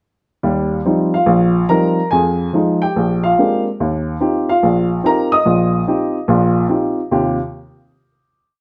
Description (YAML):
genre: solo jazz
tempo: 144 BPM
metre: 4/4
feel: swing 68% on 8ths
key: Eb major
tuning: A4 = 440 Hz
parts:
  - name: dark upright piano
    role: solo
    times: 0.4-7.4 s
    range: Bb1 to Eb6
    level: -16 LUFS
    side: equal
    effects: none
room: moderate large studio reverb, RT60 0.8 s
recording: none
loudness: -16 LUFS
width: mono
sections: 0.4-7.1 A section; 7.1-8.6 final chord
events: none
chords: 0.4 Eb69; 2.1 Fm7; 2.9 Bb13; 3.8 Eb69